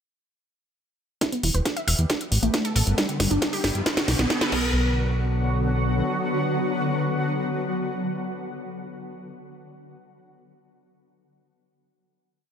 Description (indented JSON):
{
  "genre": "uplifting trance",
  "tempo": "136 BPM",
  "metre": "4/4",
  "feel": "straight",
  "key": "B minor",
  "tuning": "A4 = 441 Hz",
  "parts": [
    { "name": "shimmering ambient pad", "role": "sustained chords", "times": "2.0-9.0 s", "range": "D3 to F#4", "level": "-28 LUFS", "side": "left 1 dB", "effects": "chorus, built-in reverb, sidechain pumping" },
    { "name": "wide unison pluck", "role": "arpeggios", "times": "1.2-4.9 s", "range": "D3 to E5", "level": "-28 LUFS", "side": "equal", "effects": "phaser, sidechain pumping, ping-pong delay" },
    { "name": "electronic kick drum", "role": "drums", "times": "1.2-4.6 s", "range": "none", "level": "-33 LUFS", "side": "equal", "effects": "high-pass filter on kick" },
    { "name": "techno drum kit", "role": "drums", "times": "1.2-4.6 s", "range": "crash cymbal, hi-hat, snare drum", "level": "-25 LUFS", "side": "right 1 dB", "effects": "none" },
    { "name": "riser", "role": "sound effects", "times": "2.4-4.7 s", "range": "none", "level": "-33 LUFS", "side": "equal", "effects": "none" },
    { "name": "plucky analog bass", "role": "bass", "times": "1.4-6.0 s", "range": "E1 to G2", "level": "-23 LUFS", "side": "equal", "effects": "sidechain pumping" }
  ],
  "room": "light reverb",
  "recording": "none",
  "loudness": "-22 LUFS",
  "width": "side -8 dB against mid",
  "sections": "1.2-4.7 build; 4.7-8.3 final hit",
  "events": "build-up 1.2-4.7; drum fill 1.2-4.7; filter sweep on synth arpeggio sound 1.2-4.7; riser 2.4-4.7",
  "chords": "1.2 Em; 2.1 Aadd9; 3.0 G; 3.9 Bm"
}